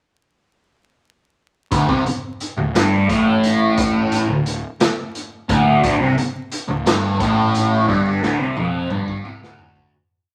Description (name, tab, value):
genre	psychedelic rock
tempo	58 BPM (dotted quarters)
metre	6/8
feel	straight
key	unclear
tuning	A4 = 440 Hz
part	fuzz guitar	riff	1.7-9.9 s	D2 to C3	-19 LUFS	equal	distortion, phaser
part	fuzz picked electric bass	bass	1.7-9.9 s	D1 to C2	-28 LUFS	equal	overdrive
part	raw garage drum kit	drums	1.7-9.9 s	hi-hat, kick drum, snare drum, toms	-26 LUFS	equal	none
room	wet studio reverb, RT60 0.9 s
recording	vinyl crackle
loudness	-18 LUFS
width	mono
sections	1.7-9.9 riff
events	fade-out 7.9-9.9; drum fill 7.9-9.9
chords	1.7 D5